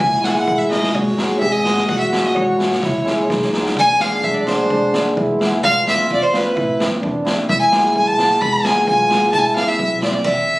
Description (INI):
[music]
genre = klezmer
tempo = 129 BPM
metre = 2/4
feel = straight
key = C# minor, E phrygian dominant from 3.8 s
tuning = A4 = 440 Hz
[part]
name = dark violin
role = melody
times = 0.0-10.6 s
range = B4 to B5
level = -17 LUFS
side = equal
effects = none
[part]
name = warm trombone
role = second line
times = 0.0-10.2 s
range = D4 to G#4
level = -22 LUFS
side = equal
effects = none
[part]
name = upright bass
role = bass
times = 0.0-10.1 s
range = E1 to G#2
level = -28 LUFS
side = equal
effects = none
[part]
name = street-band drum kit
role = drums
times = 0.0-10.3 s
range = crash cymbal, kick drum, snare drum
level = -22 LUFS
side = equal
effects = none
[part]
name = cimbalom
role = accompaniment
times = 0.2-10.1 s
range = F#3 to F#4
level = -22 LUFS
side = left 1 dB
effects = none
[sound]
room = moderate studio reverb, RT60 0.6 s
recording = recorded on a phone in the room, club reverb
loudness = -14 LUFS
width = side -19 dB against mid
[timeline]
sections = 0.0-3.8 A section; 3.8-10.6 B section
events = speeding up 0.0-10.6; drum fill 2.8-3.8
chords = 0.0 C#m; 0.9 G#m; 1.9 A; 2.8 C#m; 3.3 B; 3.8 E; 5.6 Am; 7.5 E; 9.3 Am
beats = 0.46 | 0.94 1.41 | 1.88 2.35 | 2.82 3.29 | 3.76 4.23 | 4.70 5.17 | 5.63 6.09 | 6.56 7.02 | 7.49 7.95 | 8.41 8.87 | 9.33 9.79 | 10.24